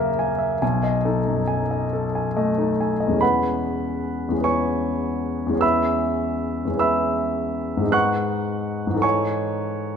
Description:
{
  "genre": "classical, impressionist solo piano",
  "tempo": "45-55 BPM (dotted quarters)",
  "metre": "6/8",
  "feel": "rubato",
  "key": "E major",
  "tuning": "A4 = 440 Hz",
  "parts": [
    { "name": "warm concert grand piano", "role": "solo", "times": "0.0-10.0 s", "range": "B1 to F#6", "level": "-20 LUFS", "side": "equal", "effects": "none" }
  ],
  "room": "wet recital hall reverb, RT60 1.8 s",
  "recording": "none",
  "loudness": "-20 LUFS",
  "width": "side -7 dB against mid",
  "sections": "0.0-3.2 A section; 3.2-10.0 B section",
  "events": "none",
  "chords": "0.0 F#9; 0.6 B6; 3.2 E6; 5.6 C#m7/E; 7.9 G#m7; 9.0 Amaj7#11/G#",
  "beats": "| 0.61 1.93 | 3.22 4.44 | 5.63 6.80 | 7.93 9.04"
}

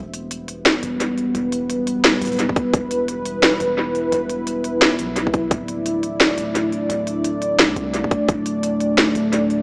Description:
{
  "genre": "half-time drum and bass",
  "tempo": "173 BPM",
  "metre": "4/4",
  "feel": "swing 60% on 16ths, half-time",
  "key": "E minor",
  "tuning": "A4 = 440 Hz",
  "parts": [
    { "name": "dark analog pad", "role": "sustained chords", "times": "0.1-9.6 s", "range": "G3 to D5", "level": "-20 LUFS", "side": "equal", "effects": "chorus, sidechain pumping" },
    { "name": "long sustained 808-style bass", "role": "bass", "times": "0.0-9.6 s", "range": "D1 to C2", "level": "-32 LUFS", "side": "equal", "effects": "none" },
    { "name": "drum and bass drum kit", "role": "drums", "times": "0.1-9.6 s", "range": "hi-hat, snare drum", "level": "-18 LUFS", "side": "equal", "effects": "analog delay" },
    { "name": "electronic kick drum", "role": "drums", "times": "2.5-2.8, 5.3-5.6, 8.0-8.4 s", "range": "none", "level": "-19 LUFS", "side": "equal", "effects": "none" }
  ],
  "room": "moderate plate reverb, RT60 2.3 s",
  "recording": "echo-heavy mix, small speaker sound",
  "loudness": "-17 LUFS",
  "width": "side -30 dB against mid",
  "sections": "0.0-9.6 A section",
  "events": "none",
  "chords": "0.0 Em; 5.5 Dsus2",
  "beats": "0.31 0.66 1.00 | 1.35 1.70 2.04 2.39 | 2.74 3.08 3.43 3.78 | 4.12 4.47 4.82 5.16 | 5.51 5.86 6.20 6.55 | 6.90 7.25 7.59 7.94 | 8.29 8.63 8.98 9.33"
}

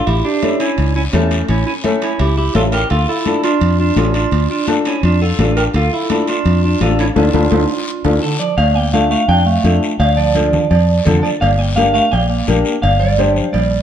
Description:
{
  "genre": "latin, cumbia",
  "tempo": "169 BPM",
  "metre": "4/4",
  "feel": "straight",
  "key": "D harmonic minor, D minor from 8.6 s",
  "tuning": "A4 = 442 Hz",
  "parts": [
    { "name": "clean electric guitar", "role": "melody", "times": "0.0-13.8 s", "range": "A3 to G5", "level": "-18 LUFS", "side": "right 2 dB", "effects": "spring reverb, plate reverb" },
    { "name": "warm clarinet", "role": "second line", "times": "0.0-13.8 s", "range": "D3 to Bb4", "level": "-22 LUFS", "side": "right 5 dB", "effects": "none" },
    { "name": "fingered electric bass", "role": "bass", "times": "0.1-13.8 s", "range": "G1 to F2", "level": "-15 LUFS", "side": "equal", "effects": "none" },
    { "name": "congas", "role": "percussion", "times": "0.1-13.7 s", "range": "none", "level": "-23 LUFS", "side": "left 4 dB", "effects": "none" },
    { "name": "guiro", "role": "percussion", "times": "0.1-13.8 s", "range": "none", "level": "-29 LUFS", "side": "left 5 dB", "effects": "none" },
    { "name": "timbales and cowbell", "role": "percussion", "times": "0.1-13.7 s", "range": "none", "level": "-26 LUFS", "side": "right 2 dB", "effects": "none" },
    { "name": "warm upright piano", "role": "accompaniment", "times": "0.4-13.4 s", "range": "C#4 to C5", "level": "-19 LUFS", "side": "left 4 dB", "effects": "none" }
  ],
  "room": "moderate studio reverb, RT60 0.7 s",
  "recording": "dark, warm production",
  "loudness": "-12 LUFS",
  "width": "side -9 dB against mid",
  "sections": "0.0-8.6 A section; 8.6-13.8 B section",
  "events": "drum fill 7.2-8.6; band accent 7.2-8.6",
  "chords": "0.1 A7; 2.9 Dm; 11.4 Gm",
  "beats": "| 0.07 0.42 0.78 1.13 | 1.49 1.84 2.20 2.55 | 2.91 3.26 3.62 3.97 | 4.33 4.68 5.03 5.39 | 5.74 6.10 6.45 6.81 | 7.16 7.52 7.87 8.23 | 8.58 8.94 9.29 9.64 | 10.00 10.35 10.71 11.06 | 11.42 11.77 12.12 12.48 | 12.83 13.19 13.54"
}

